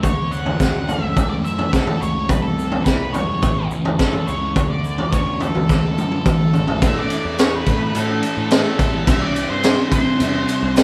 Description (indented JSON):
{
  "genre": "psychedelic rock",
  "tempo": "106 BPM",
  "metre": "4/4",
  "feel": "straight",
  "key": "unclear",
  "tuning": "A4 = 438 Hz",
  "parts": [
    { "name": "octave-fuzz lead guitar", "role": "melody", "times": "0.0-10.8 s", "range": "A4 to F#5", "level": "-28 LUFS", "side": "equal", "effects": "distortion" },
    { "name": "thick fuzz guitar", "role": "riff", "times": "0.0-10.8 s", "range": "A2 to F#4", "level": "-27 LUFS", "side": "equal", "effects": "distortion, phaser" },
    { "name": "fuzz picked electric bass", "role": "bass", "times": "0.0-10.8 s", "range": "G1 to A2", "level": "-29 LUFS", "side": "equal", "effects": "overdrive" },
    { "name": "crunchy breakbeat drum kit", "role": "drums", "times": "0.0-10.8 s", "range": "kick drum, ride cymbal, snare drum, toms", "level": "-20 LUFS", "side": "equal", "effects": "none" },
    { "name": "egg shaker", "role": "percussion", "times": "0.0-10.8 s", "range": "none", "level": "-45 LUFS", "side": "equal", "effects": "none" }
  ],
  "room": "moderate studio reverb, RT60 0.7 s",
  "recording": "band playing live in one room",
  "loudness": "-19 LUFS",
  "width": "mono",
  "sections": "0.0-6.8 A section; 6.8-10.8 B section",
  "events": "drum fill 5.7-6.8",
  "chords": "0.0 Dmaj7; 2.3 C; 3.4 A; 4.6 Dmaj7(no3); 6.8 A5; 9.1 C"
}